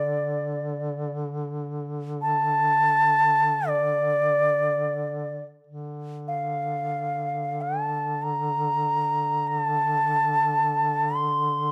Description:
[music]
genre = caucasian folk, Caucasian lament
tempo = free time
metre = none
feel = none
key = D minor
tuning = A4 = 440 Hz
[part]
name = bansuri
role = melody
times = 0.0-11.7 s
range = D5 to C6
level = -25 LUFS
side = equal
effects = none
[part]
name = warm duduk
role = drone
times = 0.0-11.7 s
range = D3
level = -34 LUFS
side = equal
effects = none
[sound]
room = light reverb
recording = close, detailed microphones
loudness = -25 LUFS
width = mono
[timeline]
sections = 0.0-5.7 A section; 5.7-11.7 A section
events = none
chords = none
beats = free time

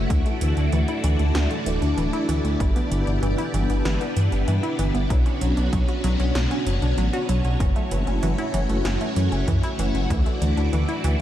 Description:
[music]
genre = synthwave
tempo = 96 BPM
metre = 4/4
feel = straight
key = unclear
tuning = A4 = 438 Hz
[part]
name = string machine, full ensemble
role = sustained chords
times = 0.0-11.2 s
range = A3 to D5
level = -26 LUFS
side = equal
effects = phaser, ensemble chorus, sidechain pumping
[part]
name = analog pluck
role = arpeggios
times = 0.0-11.2 s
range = E3 to F#4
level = -29 LUFS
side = equal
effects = chorus, tape echo
[part]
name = dark detuned saw bass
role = bass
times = 0.0-11.2 s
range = D1 to G2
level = -22 LUFS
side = equal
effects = none
[part]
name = 80s electronic pad drums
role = drums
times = 0.1-11.2 s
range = hi-hat, snare drum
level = -35 LUFS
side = right 1 dB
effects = overdrive
[part]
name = electronic kick drum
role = drums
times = 0.1-10.2 s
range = none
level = -23 LUFS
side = equal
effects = overdrive
[sound]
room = light reverb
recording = none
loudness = -20 LUFS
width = side -12 dB against mid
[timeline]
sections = 0.0-11.2 A section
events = none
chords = 0.1 Dadd9; 2.6 G6; 5.1 Bmadd9; 7.6 F#m7; 10.1 Dadd9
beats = | 0.10 0.73 1.35 1.98 | 2.60 3.23 3.85 4.48 | 5.10 5.73 6.35 6.98 | 7.60 8.23 8.85 9.48 | 10.10 10.73

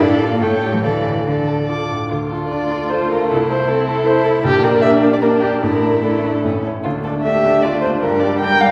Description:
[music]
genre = quick classical-period movement for piano quintet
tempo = 138-158 BPM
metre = 3/4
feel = rubato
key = D minor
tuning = A4 = 440 Hz
[part]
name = muted violin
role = melody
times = 0.0-8.7 s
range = F4 to D6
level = -21 LUFS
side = equal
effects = none
[part]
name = muted cello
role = second line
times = 0.0-8.7 s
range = D3 to Bb4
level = -24 LUFS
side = equal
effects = none
[part]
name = muted violin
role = second line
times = 0.0-8.7 s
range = C#4 to D5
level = -27 LUFS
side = equal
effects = none
[part]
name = clear baby grand piano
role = accompaniment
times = 0.0-8.7 s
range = A1 to D5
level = -23 LUFS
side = equal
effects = none
[part]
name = muted viola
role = accompaniment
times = 0.0-8.7 s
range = G3 to A4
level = -25 LUFS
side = equal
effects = none
[sound]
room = wet recital hall reverb, RT60 1.5 s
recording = recorded in a church or concert hall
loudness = -17 LUFS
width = mono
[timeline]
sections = 0.0-2.1 A section; 2.1-8.7 B section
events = none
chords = 0.0 Dm/A; 0.4 A7; 0.8 Dm; 3.3 Am/C; 4.4 Gm/Bb; 5.6 Asus4; 6.4 A; 6.8 Dm; 8.0 Gm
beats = 0.01 0.41 | 0.83 1.26 1.69 | 2.11 2.51 2.91 | 3.30 3.69 4.07 | 4.45 4.84 5.23 | 5.63 6.03 6.44 | 6.85 7.25 7.64 | 8.03 8.42

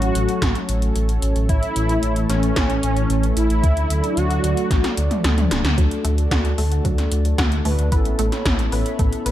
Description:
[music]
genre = synthwave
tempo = 112 BPM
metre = 4/4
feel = straight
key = unclear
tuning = A4 = 438 Hz
[part]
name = wide unison lead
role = melody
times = 0.0-4.9 s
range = C#4 to F#4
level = -24 LUFS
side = equal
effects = analog chorus, vintage 12-bit sampler grit, tape echo
[part]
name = warm analog pad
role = sustained chords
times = 0.0-9.3 s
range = E3 to B5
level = -26 LUFS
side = equal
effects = chorus, sidechain pumping
[part]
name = dark detuned saw bass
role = bass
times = 0.0-9.3 s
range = D1 to D2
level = -20 LUFS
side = equal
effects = none
[part]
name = 80s electronic pad drums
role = drums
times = 0.0-9.3 s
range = hi-hat, snare drum, toms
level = -25 LUFS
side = equal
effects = gated reverb on snare and toms, overdrive
[part]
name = electronic kick drum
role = drums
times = 0.4-9.1 s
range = none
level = -20 LUFS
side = equal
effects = none
[part]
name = analog pluck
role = arpeggios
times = 5.8-9.3 s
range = F#3 to B4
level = -29 LUFS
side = right 1 dB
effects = chorus, tape echo
[part]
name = analog synth brass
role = stabs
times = 5.8-9.3 s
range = A3 to B4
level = -27 LUFS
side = left 2 dB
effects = chorus, tape echo
[sound]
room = light reverb, digital ambience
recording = none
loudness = -17 LUFS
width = side -12 dB against mid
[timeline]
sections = 0.0-5.8 A section; 5.8-9.3 B section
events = drum fill 4.7-5.8; band accent 5.6; filter sweep on analog polysynth 5.8-9.3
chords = 0.0 F#m/A; 1.5 A; 3.6 D; 7.9 Aadd9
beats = 0.42 0.96 | 1.49 2.03 2.56 3.10 | 3.64 4.17 4.71 5.24 | 5.78 6.31 6.85 7.39 | 7.92 8.46 8.99

